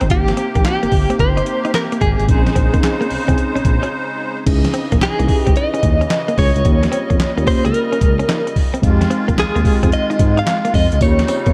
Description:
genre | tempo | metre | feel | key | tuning
R&B, new jack swing | 110 BPM | 4/4 | swing 67% on 16ths | unclear | A4 = 439 Hz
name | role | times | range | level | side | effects
mellow FM electric piano | accompaniment | 0.0-11.5 s | Ab3 to Ab4 | -25 LUFS | equal | chorus, phaser
musette accordion | sustained chords | 0.0-11.5 s | C3 to Eb5 | -28 LUFS | equal | none
direct-recorded clean electric guitar | riff | 0.0-11.5 s | Ab3 to Eb4 | -28 LUFS | equal | subtle chorus
smooth gliding synth bass | bass | 0.0-11.5 s | G1 to Ab2 | -21 LUFS | equal | none
boom bap sampler-style drum kit | drums | 0.0-11.5 s | crash cymbal, handclaps, hi-hat, kick drum, snare drum, tambourine | -20 LUFS | equal | none
direct-recorded clean electric guitar | melody | 0.1-11.5 s | G4 to F5 | -23 LUFS | equal | tremolo, tape echo
room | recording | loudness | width
light reverb, digital ambience | dark, warm production | -16 LUFS | mono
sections
0.0-4.5 A section; 4.5-11.5 B section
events
break 3.9-4.5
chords
0.1 Abmaj9; 2.3 Bbm11; 4.5 Dbmadd9; 6.6 Eb7; 8.8 Fm7; 11.0 Eb7

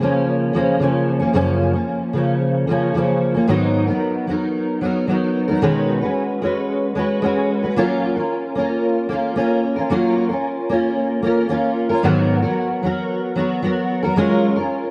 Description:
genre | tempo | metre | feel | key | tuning
indie pop | 112 BPM | 4/4 | straight | F# major | A4 = 439 Hz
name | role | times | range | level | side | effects
fingerpicked steel-string acoustic guitar | solo | 0.0-14.9 s | F#2 to B4 | -19 LUFS | equal | ensemble chorus, vibrato effect, delay
room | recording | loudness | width
light reverb | none | -19 LUFS | mono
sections
0.0-14.9 A section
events
none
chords
0.0 F#maj7 (rootless); 3.5 G#m9; 5.6 B69; 7.8 F#maj7; 12.0 G#m9; 14.2 F#maj9

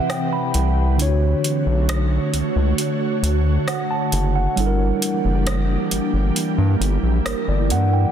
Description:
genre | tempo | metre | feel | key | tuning
contemporary R&B | 67 BPM | 4/4 | straight | D major | A4 = 440 Hz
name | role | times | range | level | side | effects
mellow tine electric piano | accompaniment | 0.0-8.1 s | C3 to B5 | -23 LUFS | right 2 dB | medium stereo tremolo
ethereal airy pad | sustained chords | 0.0-8.1 s | D3 to C#5 | -24 LUFS | right 1 dB | ensemble chorus, built-in reverb
booming analog drum machine | drums | 0.1-7.9 s | hi-hat, rim click | -28 LUFS | right 1 dB | soft clipping on snare
round analog bass | bass | 0.5-8.1 s | F#1 to G2 | -18 LUFS | equal | none
room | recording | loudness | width
light reverb | dense, heavily limited modern master | -17 LUFS | side -9 dB against mid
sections
0.0-8.1 A section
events
break 0.0-8.1; tine electric piano fill 0.0-1.0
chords
0.0 Cmaj7; 1.0 Dmaj7; 4.6 Gm6

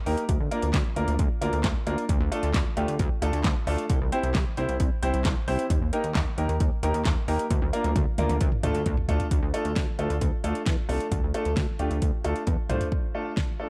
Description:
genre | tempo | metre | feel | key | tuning
synth-pop | 133 BPM | 4/4 | straight | D minor | A4 = 440 Hz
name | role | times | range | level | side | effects
clear concert grand piano | accompaniment | 0.1-13.7 s | A3 to C5 | -32 LUFS | equal | none
chorused synth bass | bass | 0.1-12.8 s | C2 to E2 | -30 LUFS | equal | none
pop drum kit | drums | 0.1-13.5 s | handclaps, hi-hat, kick drum, snare drum, toms | -29 LUFS | equal | none
room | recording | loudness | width
light reverb, digital ambience | dark, warm production | -26 LUFS | mono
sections
0.0-9.3 A section; 9.3-12.9 B section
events
drum fill 7.5-9.3, 12.5-12.9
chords
0.3 Bb/D; 2.1 Dm; 3.9 C; 5.7 Eb; 7.5 Bb/D; 8.4 Dm

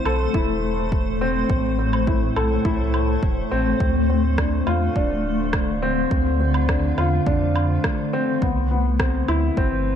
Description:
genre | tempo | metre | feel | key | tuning
piano and strings electronica | 104 BPM | 4/4 | straight | D dorian | A4 = 440 Hz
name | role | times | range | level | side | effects
granular cloud pad | sustained chords | 0.0-10.0 s | A2 to C5 | -25 LUFS | left 1 dB | built-in reverb
dark upright piano | riff | 0.0-10.0 s | B3 to A4 | -24 LUFS | left 2 dB | ping-pong delay
warm sub bass | bass | 0.1-10.0 s | D1 to F2 | -23 LUFS | equal | sidechain pumping
electronic woodblock and rim click | drums | 0.1-9.4 s | none | -29 LUFS | right 2 dB | none
electronic kick drum | drums | 0.3-9.7 s | none | -24 LUFS | equal | overdrive
room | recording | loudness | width
moderate lush hall reverb, RT60 1.9 s, digital ambience | dark, warm production | -18 LUFS | side -9 dB against mid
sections
0.0-10.0 A section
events
none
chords
0.0 Am; 3.8 Dm7; 8.4 Cmaj7

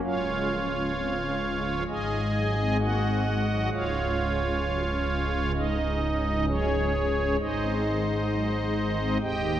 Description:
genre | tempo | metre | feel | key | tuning
classical, chorale-style piece for pipe organ | 65 BPM | 4/4 | straight | Db major | A4 = 440 Hz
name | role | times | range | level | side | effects
pipe organ, strings celeste | solo | 0.0-9.6 s | Db1 to Ab5 | -24 LUFS | equal | none
room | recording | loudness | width
wet church reverb, RT60 2.9 s | none | -24 LUFS | side -11 dB against mid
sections
0.0-9.6 A section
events
none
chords
0.0 Db; 1.9 Ab7; 3.7 Db; 7.4 Ab

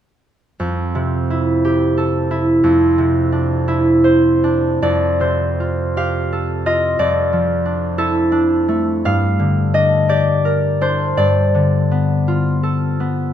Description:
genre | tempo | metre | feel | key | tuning
classical, solo harp piece | 50-62 BPM (dotted quarters) | 6/8 | rubato | F major | A4 = 440 Hz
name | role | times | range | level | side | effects
concert harp | solo | 0.6-13.3 s | F2 to F5 | -14 LUFS | equal | none
room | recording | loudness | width
light reverb | close, detailed microphones | -14 LUFS | side -10 dB against mid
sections
0.6-4.8 A section; 4.8-13.3 B section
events
none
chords
0.6 Fmaj9; 2.6 Dm9/F; 4.8 Fadd9; 7.0 Dmadd9/F; 9.0 Gm7; 11.2 G9

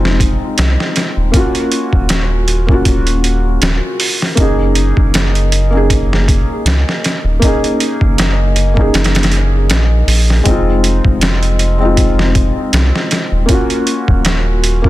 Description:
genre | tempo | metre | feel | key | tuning
trip hop | 79 BPM | 4/4 | swing 56% on 16ths | unclear | A4 = 437 Hz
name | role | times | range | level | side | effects
felt-muted upright piano | accompaniment | 0.0-14.9 s | Ab3 to Ab4 | -16 LUFS | left 1 dB | harmonic tremolo, tape echo
round analog bass | bass | 0.0-14.9 s | Eb1 to Db2 | -14 LUFS | equal | none
trip hop sampler-style drum kit | drums | 0.1-14.9 s | hi-hat, kick drum, snare drum | -14 LUFS | equal | none
room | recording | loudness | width
digital ambience | dense, heavily limited modern master | -11 LUFS | side -16 dB against mid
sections
0.0-14.9 A section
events
none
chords
0.0 Fm7; 1.3 Ebm7; 4.4 Gb69; 10.5 Fm7; 13.5 Ebm7

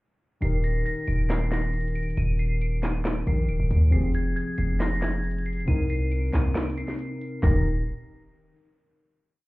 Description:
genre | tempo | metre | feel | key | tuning
hip hop, trap | 137 BPM | 4/4 | half-time | Eb major | A4 = 440 Hz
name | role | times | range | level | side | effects
glassy synth bell | melody | 0.4-7.6 s | Ab6 to Eb7 | -36 LUFS | right 1 dB | chorus, low-pass filter, slapback echo
muted felt-like synth keys | accompaniment | 0.4-7.6 s | C3 to Bb4 | -30 LUFS | left 1 dB | chorus, low-pass filter
hard-hitting 808-style bass | bass | 0.4-7.8 s | D1 to Eb2 | -24 LUFS | equal | none
trap drum kit | drums | 0.4-7.5 s | handclaps, hi-hat, kick drum, snare drum | -27 LUFS | equal | none
room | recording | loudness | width
little or no reverb | heard muffled through a wall, club reverb, EQ | -23 LUFS | side -21 dB against mid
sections
0.4-7.4 hook; 7.4-9.2 final chord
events
break 6.6-7.4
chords
0.4 Eb; 3.9 Fmadd9; 5.7 Cm7; 7.4 N.C.

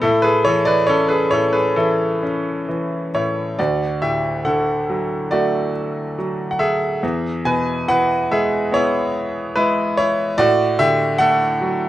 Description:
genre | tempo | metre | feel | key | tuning
classical, lyrical solo piano | 65-74 BPM | 4/4 | rubato | D major from 3.6 s | A4 = 445 Hz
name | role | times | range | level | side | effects
bright grand piano | solo | 0.0-11.9 s | D2 to G#5 | -16 LUFS | equal | none
room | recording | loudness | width
light reverb | none | -16 LUFS | side -14 dB against mid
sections
0.0-3.6 A section; 3.6-11.9 B section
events
none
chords
0.0 Aadd9; 3.6 D; 7.0 E; 10.4 D/A

